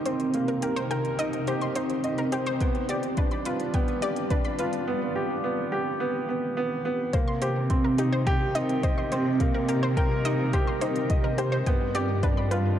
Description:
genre	piano and strings electronica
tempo	106 BPM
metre	4/4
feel	straight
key	C minor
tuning	A4 = 439 Hz
part	granular cloud pad	sustained chords	0.0-12.8 s	C3 to Eb5	-32 LUFS	equal	built-in reverb, sidechain pumping
part	warm upright piano	riff	0.0-12.8 s	Bb3 to Eb5	-28 LUFS	right 1 dB	tape echo
part	analog pluck	arpeggios	0.1-12.6 s	G4 to C6	-33 LUFS	left 2 dB	chorus, vintage 12-bit sampler grit, sidechain pumping, tape echo
part	electronic hi-hat	drums	0.1-12.6 s	none	-42 LUFS	right 4 dB	none
part	electronic kick drum	drums	2.6-12.3 s	none	-26 LUFS	equal	none
part	dark studio cello section	bass	7.1-12.8 s	G2 to C3	-28 LUFS	equal	sidechain pumping
room	moderate huge ambient reverb, RT60 4.2 s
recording	dark, warm production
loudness	-24 LUFS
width	side -10 dB against mid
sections	0.0-7.1 A section; 7.1-12.8 B section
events	build-up 0.0-7.1; drop 7.1-12.8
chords	0.0 Cm7; 2.6 G7; 7.1 Cm7; 11.7 G7

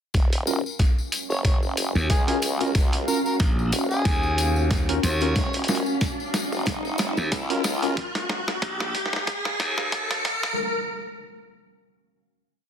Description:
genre	glitch hop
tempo	92 BPM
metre	4/4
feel	swing 56% on 16ths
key	Eb minor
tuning	A4 = 438 Hz
part	formant-sweep wobble bass	bass	0.1-7.9 s	Eb1 to Db2	-29 LUFS	equal	chorus, high-pass filter
part	boom bap sampler-style drum kit	drums	0.1-10.6 s	hi-hat, snare drum	-29 LUFS	right 1 dB	none
part	electronic kick drum	drums	0.1-10.1 s	none	-23 LUFS	equal	none
part	tambourine	percussion	0.1-7.9 s	none	-34 LUFS	left 6 dB	none
part	riser	sound effects	1.9-10.6 s	none	-31 LUFS	equal	none
part	ethereal airy pad	texture	1.2-8.0 s	Db4 to F5	-31 LUFS	right 1 dB	ensemble chorus, built-in reverb, sidechain pumping
part	tine electric piano	stabs	0.5-7.9 s	Db4 to Bb4	-29 LUFS	left 1 dB	medium stereo tremolo, sidechain pumping, ping-pong delay
part	overdriven harmonica	melody	1.3-5.5 s	Ab4 to Db5	-30 LUFS	left 1 dB	ping-pong delay
part	glassy slap bass	bass	2.0-10.2 s	Bb1 to Eb2	-24 LUFS	equal	none
room	moderate plate reverb, RT60 1.6 s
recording	dense, heavily limited modern master, high-pass filter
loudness	-22 LUFS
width	side -8 dB against mid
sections	0.1-10.6 build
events	build-up 0.1-10.6; drum fill 0.1-10.6; filter sweep 0.1-10.6; riser 1.9-10.6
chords	0.1 Ebm9

